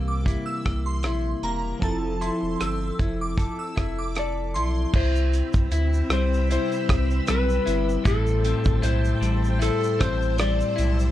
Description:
indie pop, bedroom pop; 77 BPM; 4/4; swing 55% on 16ths; C major; A4 = 441 Hz
electric guitar at the edge of break-up; accompaniment; 0.0-11.1 s; A2 to A4; -28 LUFS; left 3 dB; wide subtle chorus, warbly pitch drift
warbly lo-fi synth keys; accompaniment; 0.0-5.0 s; E3 to A4; -33 LUFS; right 4 dB; chorus, cassette tape
warm sub bass; bass; 0.0-11.1 s; E1 to D2; -25 LUFS; equal
shimmering bell with halo; second line; 0.1-4.7 s; A5 to E6; -33 LUFS; right 2 dB; ensemble chorus, phaser, analog chorus, tape echo
damped 70s drum kit; drums; 0.3-11.1 s; crash cymbal, hi-hat, kick drum, rim click, shaker; -25 LUFS; equal; vintage 12-bit sampler grit
electric slide guitar; melody; 4.2-11.1 s; A4 to D5; -28 LUFS; left 2 dB; wide subtle chorus
string machine, full ensemble; sustained chords; 4.9-11.1 s; C4 to E6; -32 LUFS; equal; ensemble chorus
light reverb; cassette tape; -21 LUFS; side -13 dB against mid
0.0-4.9 A section; 4.9-11.1 B section
0.0 C7; 1.8 Fmaj7; 4.9 Cmaj7; 8.1 Am7
0.26 1.04 | 1.82 2.60 3.38 4.16 | 4.94 5.71 6.49 7.27 | 8.05 8.83 9.61 10.39

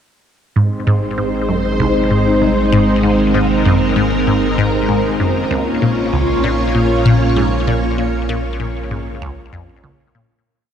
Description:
ambient, sequencer-driven space music; 97 BPM; 4/4; straight; Bb minor; A4 = 438 Hz
string machine, full ensemble; sustained chords; 0.6-10.4 s; Ab3 to Db5; -16 LUFS; equal; phaser, ensemble chorus, shimmer reverb
resonant blip pluck; riff; 0.6-10.3 s; C2 to Bb2; -17 LUFS; left 1 dB; phaser, ping-pong delay
round analog bass; bass; 0.6-10.4 s; Ab1 to Bb1; -23 LUFS; equal; tube saturation
wet huge ambient reverb, RT60 7.9 s; dark, warm production; -13 LUFS; side -8 dB against mid
0.6-10.5 A section
fade-out 7.2-10.5
0.6 Ab; 5.5 Bbm
| 0.56 1.18 1.80 2.42 | 3.04 3.65 4.27 4.89 | 5.51 6.13 6.75 7.37 | 7.98 8.60 9.22 9.84

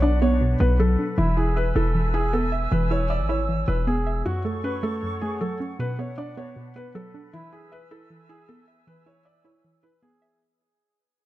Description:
hip hop; 156 BPM; 4/4; half-time; A4 = 441 Hz
felt-muted upright piano; melody; 0.0-10.4 s; E4 to D5; -29 LUFS; equal
soft round pluck; accompaniment; 0.0-10.4 s; F#2 to E5; -27 LUFS; right 1 dB; chorus
bright large flute ensemble; sustained chords; 0.0-10.4 s; D4 to E6; -35 LUFS; right 3 dB
hard-hitting 808-style bass; bass; 0.0-4.2 s; E1 to B1; -22 LUFS; equal
light reverb, studio reverb; dark, warm production; -21 LUFS; side -16 dB against mid
0.0-10.4 A section
fade-out 0.0-10.4
0.0 Bm; 1.2 E; 4.3 F#m; 5.8 Bm; 7.3 E
0.02 0.41 0.79 | 1.18 1.56 1.95 2.33 | 2.72 3.10 3.49 3.87 | 4.25 4.64 5.02 5.41 | 5.79 6.18 6.56 6.95 | 7.33 7.72 8.10 8.49 | 8.87 9.26 9.64 10.02

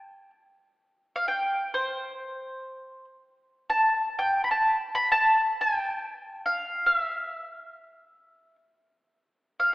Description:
Persian modal ensemble; free time; A4 = 440 Hz
mandolin; solo; 0.0-9.7 s; C5 to B5; -24 LUFS; equal
wet concert hall reverb, RT60 2.0 s; recorded in a church or concert hall, AM radio sound; -23 LUFS; side -20 dB against mid
0.0-3.3 A section; 3.3-9.7 A section
free time

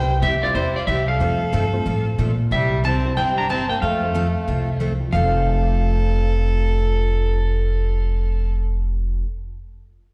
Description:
country, western swing; 183 BPM; 4/4; swing 62% on 8ths; F major; A4 = 437 Hz
clean lap steel guitar; melody; 0.0-8.5 s; C5 to Bb5; -26 LUFS; equal; slapback echo
clear fiddle; second line; 0.0-8.5 s; G3 to C5; -30 LUFS; equal; slapback echo
picked steel-string acoustic guitar; accompaniment; 0.0-9.3 s; C3 to A4; -32 LUFS; equal
upright bass; bass; 0.0-9.2 s; F1 to Bb2; -23 LUFS; equal
dark upright piano; accompaniment; 0.4-9.4 s; F2 to E7; -36 LUFS; equal; slapback echo
small room reverb; live gig heard through the venue's PA, recital hall reverb; -21 LUFS; mono
0.0-2.5 A section; 2.5-5.1 B section; 5.1-7.7 C section
0.0 C; 1.2 F; 2.5 C; 3.8 F
0.22 0.55 0.88 | 1.20 1.53 1.86 2.19 | 2.51 2.84 3.17 3.49 | 3.82 4.15 4.48 4.80 | 5.13 5.46 5.79 6.11 | 6.44 6.77 7.09 7.42

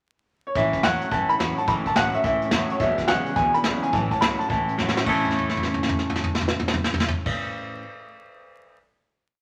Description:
rockabilly; 213 BPM; 4/4; swing 64% on 8ths; A major; A4 = 437 Hz
clear upright piano; melody; 0.5-7.3 s; C#5 to B5; -26 LUFS; equal
picked steel-string acoustic guitar; accompaniment; 0.6-7.8 s; E2 to E4; -34 LUFS; equal
twangy electric guitar; riff; 0.6-7.8 s; E2 to C#5; -30 LUFS; equal
upright bass; bass; 0.6-7.3 s; E1 to F#2; -39 LUFS; equal
vintage brush drum kit; drums; 0.6-8.8 s; crash cymbal, hi-hat, kick drum, snare drum, toms; -28 LUFS; equal
moderate large studio reverb, RT60 1.2 s; vinyl crackle; -23 LUFS; mono
0.0-0.6 pickup bar; 0.6-5.1 A section; 5.1-7.3 final chord
drum fill 4.8, 5.2-7.2
0.0 N.C.; 0.6 A; 2.8 E7; 3.9 A
0.27 | 0.56 0.83 1.12 1.40 | 1.68 1.96 2.24 2.52 | 2.80 3.09 3.37 3.65 | 3.93 4.21 4.50 4.78 | 5.06 5.35 5.63 5.91 | 6.19 6.47 6.76 7.04

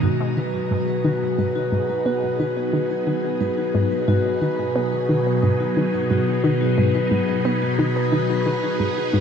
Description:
ambient; 89 BPM; 4/4; straight; G# minor; A4 = 440 Hz
phased string machine; sustained chords; 0.0-9.2 s; B2 to A#5; -23 LUFS; right 1 dB; ensemble chorus, phaser
vibraphone with medium mallets; arpeggios; 0.0-9.2 s; F#4 to B4; -24 LUFS; moving between left 6 dB and right 2 dB; auto-pan, ping-pong delay
analog pluck; riff; 0.0-9.2 s; G#2 to B3; -24 LUFS; equal; chorus, ping-pong delay
bubbling stepped-filter texture; texture; 0.0-9.2 s; B4; -39 LUFS; equal
moderate shimmer reverb, RT60 7.4 s; cassette tape; -19 LUFS; side -7 dB against mid
0.0-9.2 A section
filter sweep on synth arpeggio sound 0.0-9.2
0.0 G#madd9
| 0.04 0.71 1.39 2.06 | 2.73 3.41 4.08 4.76 | 5.43 6.10 6.78 7.45 | 8.13 8.80

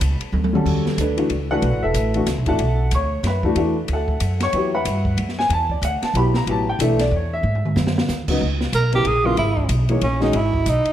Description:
modal jazz; 186 BPM; 3/4; swing 61% on 8ths; E dorian; A4 = 438 Hz
dark baby grand piano; accompaniment; 0.0-10.3 s; C#3 to C#6; -22 LUFS; left 1 dB; lush chorus
upright bass; bass; 0.0-10.9 s; E1 to G#2; -21 LUFS; equal
open jazz drum kit; drums; 0.0-10.9 s; crash cymbal, hi-hat, kick drum, ride cymbal, snare drum, toms; -26 LUFS; equal
breathy tenor saxophone; melody; 8.7-10.9 s; C#4 to A#4; -20 LUFS; right 2 dB; analog delay
moderate plate reverb, RT60 1.6 s, small room ambience; dreamy mix soaked in reverb; -17 LUFS; side -11 dB against mid
0.6-8.4 A section; 8.4-10.9 A section
drum fill 0.3-0.6, 7.4-8.1; tenor saxophone solo 8.4-10.9
0.0 Em9 (rootless); 0.6 E9sus4; 7.4 G#5; 8.4 C#m7
0.00 0.32 | 0.65 0.97 1.29 | 1.62 1.94 2.27 | 2.59 2.91 3.24 | 3.56 3.88 4.21 | 4.53 4.85 5.18 | 5.50 5.82 6.15 | 6.47 6.79 7.11 | 7.44 7.76 8.08 | 8.40 8.73 9.05 | 9.37 9.69 10.02 | 10.34 10.66

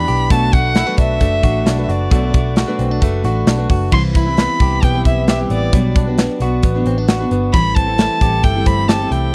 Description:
jangly indie pop; 133 BPM; 4/4; straight; A4 = 441 Hz
warm violin; melody; 0.0-9.3 s; D5 to C6; -22 LUFS; equal
picked steel-string acoustic guitar; accompaniment; 0.0-9.3 s; A2 to B4; -25 LUFS; equal
direct-recorded clean electric guitar; arpeggios; 0.0-9.3 s; E3 to G4; -24 LUFS; equal
vintage muted picked electric bass; bass; 0.0-9.3 s; F#1 to C2; -21 LUFS; equal
modern studio drum kit; drums; 0.1-9.2 s; crash cymbal, hi-hat, kick drum, snare drum; -16 LUFS; equal
little or no reverb; dry, close 1970s-style studio recording; -15 LUFS; mono
0.0-3.9 A section; 3.9-9.3 B section
0.3 Bm7; 3.9 Cmaj7; 5.7 Gmaj7/B; 7.5 Am7
| 0.30 0.76 1.21 1.66 | 2.12 2.57 3.02 3.47 | 3.92 4.38 4.83 5.28 | 5.73 6.19 6.64 7.09 | 7.54 7.99 8.44 8.89 | 9.34

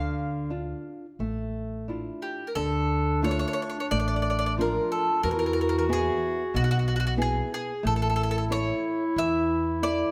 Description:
italian folk, Italian serenade; 91 BPM; 4/4; rubato; D harmonic minor; A4 = 440 Hz
mandolin; melody; 0.0-10.1 s; F#4 to F5; -31 LUFS; equal
nylon-string guitar; accompaniment; 0.0-10.1 s; B2 to E5; -34 LUFS; equal
upright bass; bass; 0.0-10.0 s; A1 to E2; -32 LUFS; equal
mellow clarinet; second line; 2.6-10.1 s; D4 to F#4; -32 LUFS; equal
moderate recital hall reverb, RT60 1.5 s; -27 LUFS; mono
0.0-2.6 A section; 2.6-10.1 A section
0.0 Dmadd9; 2.6 Dm; 5.2 E; 7.8 A
0.53 1.20 1.88 | 2.56 3.24 3.91 4.57 | 5.23 5.89 6.55 7.20 | 7.85 8.50 9.16 9.82

